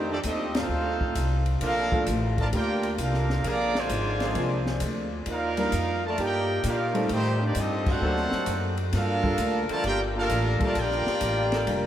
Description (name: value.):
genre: jazz, big band swing.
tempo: 131 BPM.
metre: 4/4.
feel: swing 68% on 8ths.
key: unclear.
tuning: A4 = 440 Hz.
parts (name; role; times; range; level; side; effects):
clear trumpet section; melody; 0.0-11.9 s; A3 to Bb5; -28 LUFS; equal; none.
clear trombone section; second line; 0.0-11.9 s; D3 to G4; -31 LUFS; right 2 dB; none.
warm concert grand piano; accompaniment; 0.0-11.9 s; F3 to Bb4; -34 LUFS; left 1 dB; none.
upright bass; bass; 0.0-11.9 s; F1 to Bb2; -28 LUFS; equal; none.
clear saxophone section; sustained chords; 0.1-11.6 s; D3 to A4; -39 LUFS; equal; none.
open jazz drum kit; drums; 0.2-11.8 s; crash cymbal, hi-hat, kick drum, ride cymbal, snare drum; -33 LUFS; left 1 dB; none.
room: wet cathedral reverb, RT60 5.7 s.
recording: in a vast, echoing space.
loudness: -23 LUFS.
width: side -11 dB against mid.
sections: 0.0-11.9 A section.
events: band accent 0.5, 7.8.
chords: 0.0 F13; 1.6 Bbmaj7; 3.4 Bb9; 5.3 Ebmaj7; 7.1 Am7b5; 8.0 D7b13; 8.9 Gm9.